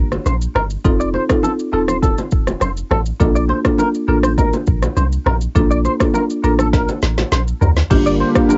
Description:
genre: afrobeats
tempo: 102 BPM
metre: 4/4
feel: straight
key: Bb major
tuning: A4 = 442 Hz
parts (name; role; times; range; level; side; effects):
- punchy sub bass; bass; 0.0-8.2 s; Eb1 to D2; -21 LUFS; equal; none
- afro-pop drum kit; drums; 0.1-8.6 s; crash cymbal, kick drum, rim click, shaker, snare drum, toms; -20 LUFS; equal; cassette tape
- bongos and congas; percussion; 0.1-8.6 s; none; -27 LUFS; equal; none
- direct-recorded clean electric guitar; riff; 0.3-8.6 s; A4 to D5; -24 LUFS; equal; ensemble chorus, cassette tape, analog delay
- marimba with medium mallets; accompaniment; 0.8-8.5 s; Bb3 to A4; -21 LUFS; equal; cassette tape
- lush unison pad; sustained chords; 7.9-8.6 s; D3 to F4; -21 LUFS; equal; chorus, cassette tape
room: moderate booth ambience, RT60 0.2 s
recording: home recording on cassette, nothing above 7.8 kHz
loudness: -16 LUFS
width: mono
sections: 0.0-7.9 A section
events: drum fill 6.7-7.9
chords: 0.0 Gm; 0.8 F7; 3.2 Bbmaj7; 7.9 Gm7

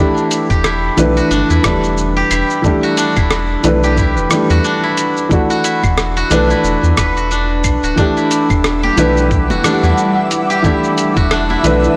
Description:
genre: organic downtempo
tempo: 90 BPM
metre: 4/4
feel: swing 58% on 16ths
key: E minor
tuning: A4 = 440 Hz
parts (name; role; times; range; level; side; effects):
- felt-muted upright piano; accompaniment; 0.0-12.0 s; E3 to B4; -18 LUFS; equal; sidechain pumping, tape echo
- steel-string zither; arpeggios; 0.0-12.0 s; D4 to B4; -20 LUFS; equal; tape echo
- dusty soul sampler-style drum kit; drums; 0.2-11.9 s; claves, hi-hat, rim click, shaker; -23 LUFS; equal; small room ambience, soft clipping on snare
- round analog bass; bass; 0.5-11.9 s; D1 to E2; -20 LUFS; equal; sidechain pumping
- electronic kick drum; drums; 0.5-11.3 s; none; -19 LUFS; equal; small room ambience
- ethereal airy pad; sustained chords; 8.9-12.0 s; G3 to D6; -23 LUFS; equal; ensemble chorus, built-in reverb, phaser, sidechain pumping
- twinkling granular texture; texture; 8.6-12.0 s; E4 to E5; -28 LUFS; equal; built-in reverb
- congas and bongos; percussion; 8.8-11.6 s; none; -29 LUFS; equal; none
room: moderate lush hall reverb, RT60 2.0 s, digital ambience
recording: blown-out, overdriven recording, overdrive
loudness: -14 LUFS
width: mono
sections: 0.0-12.0 A section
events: none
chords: 0.0 Em11; 5.3 D/E; 8.0 Em11

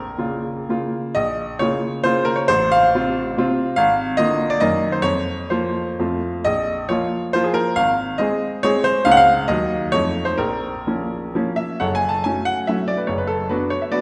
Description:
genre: classical, romantic triple-time dance for piano with dotted rhythms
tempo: 114-156 BPM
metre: 3/4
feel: rubato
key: Bb minor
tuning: A4 = 440 Hz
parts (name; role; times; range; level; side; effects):
- bright baby grand piano; solo; 0.0-14.0 s; F#1 to A5; -20 LUFS; equal; none
room: wet recital hall reverb, RT60 1.6 s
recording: heard from further back in the room, nothing above 10.8 kHz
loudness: -20 LUFS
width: mono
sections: 0.0-1.2 A section; 1.2-11.8 A section; 11.8-14.0 B section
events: none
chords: 0.0 Bbm; 2.5 F/A; 3.8 Bb7/Ab; 4.6 Ebm/Gb; 5.0 Fsus4; 6.0 F; 6.4 Bbm; 7.8 Ab; 9.1 Db; 9.5 Ebm; 9.9 F7; 10.4 Bbm; 11.8 F#m; 13.1 Bm/F#

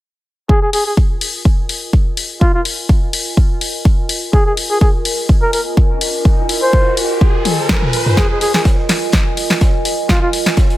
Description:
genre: bass house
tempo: 125 BPM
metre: 4/4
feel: swing 54% on 16ths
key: F minor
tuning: A4 = 439 Hz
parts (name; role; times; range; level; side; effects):
- trumpet with bucket mute; melody; 0.5-10.3 s; F4 to C5; -19 LUFS; equal; tape echo
- electronic kick drum; drums; 0.5-10.7 s; none; -12 LUFS; equal; none
- warbly tape-like pad; texture; 1.2-10.8 s; F4 to Ab5; -22 LUFS; right 1 dB; chorus, built-in reverb, sidechain pumping
- house drum kit; drums; 0.7-10.6 s; hi-hat, snare drum, toms; -18 LUFS; left 1 dB; none
- riser; sound effects; 5.9-8.2 s; none; -25 LUFS; right 2 dB; none
- crunchy breakbeat drum kit; drums; 8.2-10.8 s; hi-hat, snare drum; -30 LUFS; right 1 dB; high-pass filter on hats, high-pass filter on snare, high-pass filter on room
room: studio reverb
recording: none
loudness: -12 LUFS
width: side -15 dB against mid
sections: 0.5-8.2 A section; 8.2-10.8 B section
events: riser 5.9-8.2; drum fill 7.5-8.2, 8.2-10.8; build-up 8.2-10.8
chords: 0.5 Fm

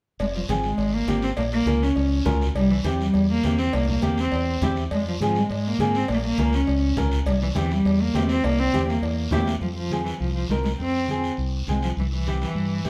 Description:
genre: latin, cumbia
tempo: 204 BPM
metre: 4/4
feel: straight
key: F harmonic minor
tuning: A4 = 440 Hz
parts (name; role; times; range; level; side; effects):
- warm cello; melody; 0.2-12.9 s; E3 to Db4; -26 LUFS; equal; none
- fingered electric bass; bass; 0.2-12.9 s; F1 to Ab2; -28 LUFS; equal; none
- congas; percussion; 0.2-12.9 s; none; -35 LUFS; equal; none
- cowbell and timbales; percussion; 0.2-9.5 s; none; -36 LUFS; equal; none
- guiro; percussion; 0.2-12.9 s; none; -40 LUFS; equal; none
- flamenco guitar; accompaniment; 0.5-12.9 s; C4 to Bb4; -30 LUFS; equal; none
room: moderate studio reverb, RT60 0.8 s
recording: band playing live in one room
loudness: -23 LUFS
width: mono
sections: 0.2-9.6 A section; 9.6-12.9 B section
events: none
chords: 0.2 Fm; 1.4 Bbm; 2.6 C7; 4.9 Fm; 6.1 Bbm; 7.3 C7; 9.6 Fm; 12.0 C

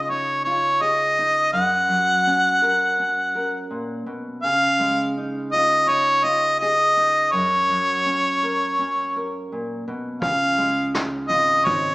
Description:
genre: acoustic folk duo or small band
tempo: 83 BPM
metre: 4/4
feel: straight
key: F# major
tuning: A4 = 440 Hz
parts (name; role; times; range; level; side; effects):
- warm harmonica; melody; 0.0-11.9 s; C#5 to F#5; -18 LUFS; equal; none
- nylon-string guitar; accompaniment; 0.0-11.9 s; F#2 to A#4; -28 LUFS; equal; none
- upright bass; bass; 10.2-11.9 s; G#1 to C#2; -33 LUFS; equal; none
- vintage brush drum kit; drums; 10.2-11.8 s; kick drum, snare drum; -27 LUFS; equal; none
room: moderate recital hall reverb, RT60 1.5 s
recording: recorded in a church or concert hall, small speaker sound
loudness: -18 LUFS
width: side -24 dB against mid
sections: 0.0-11.9 A section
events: none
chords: 0.0 C#add9; 1.5 F#; 4.4 C#add9; 7.3 F#; 10.2 C#add9

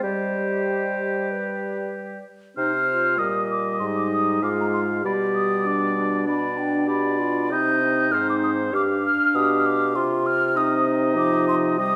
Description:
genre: quick classical-period movement for wind quintet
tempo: 97 BPM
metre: 4/4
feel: straight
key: C minor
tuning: A4 = 440 Hz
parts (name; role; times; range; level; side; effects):
- mellow hollow concert flute; melody; 0.0-12.0 s; D5 to G6; -27 LUFS; equal; none
- clear oboe; second line; 0.0-12.0 s; G4 to F5; -30 LUFS; equal; none
- dark French horn; accompaniment; 0.0-12.0 s; F3 to D4; -30 LUFS; equal; none
- mellow clarinet; accompaniment; 0.0-12.0 s; D4 to C5; -29 LUFS; equal; none
- mellow bassoon; bass; 0.0-12.0 s; G2 to G3; -30 LUFS; equal; none
room: moderate scoring stage reverb, RT60 1.5 s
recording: none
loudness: -22 LUFS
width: mono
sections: 0.0-2.6 A section; 2.6-12.0 B section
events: none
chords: 0.0 Cm/G; 1.3 G; 2.6 Cm; 3.8 Ab5; 5.0 G/B; 7.5 Cm; 8.7 G; 10.0 Cm

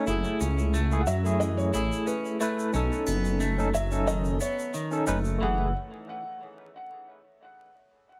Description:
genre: trip hop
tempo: 90 BPM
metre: 4/4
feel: straight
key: F# dorian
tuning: A4 = 440 Hz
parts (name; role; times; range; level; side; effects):
- barky tine electric piano; accompaniment; 0.0-5.7 s; A3 to B4; -33 LUFS; equal; tremolo, tape echo
- clean electric guitar; arpeggios; 0.0-5.7 s; D#3 to E4; -36 LUFS; equal; subtle chorus, tape echo
- dark detuned saw bass; bass; 0.1-5.7 s; F#1 to F#2; -30 LUFS; equal; none
- tube shaker and triangle; percussion; 0.1-5.4 s; none; -44 LUFS; equal; none
- felt-muted upright piano; melody; 1.0-5.7 s; B4 to F#5; -36 LUFS; equal; tape echo
room: light reverb, small room ambience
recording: vinyl crackle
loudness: -27 LUFS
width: mono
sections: 0.0-5.4 A section; 5.4-8.1 B section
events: none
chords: 0.1 F#m7; 2.7 B9; 5.4 F#m7

